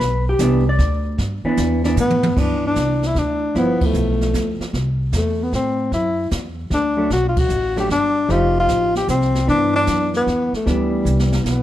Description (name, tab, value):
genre	jazz, small-group swing and bop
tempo	152 BPM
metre	3/4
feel	swing 67% on 8ths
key	G major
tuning	A4 = 440 Hz
part	hollow-body jazz guitar	accompaniment	0.0-4.7, 7.0-11.6 s	E3 to D5	-22 LUFS	right 1 dB	none
part	upright bass	bass	0.0-11.6 s	F1 to A2	-21 LUFS	equal	none
part	jazz brush drum kit	drums	0.0-11.6 s	brushed snare drum, crash cymbal, hi-hat, kick drum, ride cymbal, snare drum, toms	-25 LUFS	right 1 dB	none
part	breathy tenor saxophone	melody	2.0-11.6 s	G3 to G4	-19 LUFS	left 2 dB	none
room	light reverb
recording	dark, warm production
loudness	-16 LUFS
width	side -12 dB against mid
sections	0.0-2.4 A section; 2.4-11.6 B section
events	drum fill 2.0-2.4, 11.1-11.5; band accent 3.7, 7.3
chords	0.0 G6; 3.5 G13; 4.7 C6; 5.9 Dadd9; 7.1 Bm7; 8.3 F9; 9.5 G6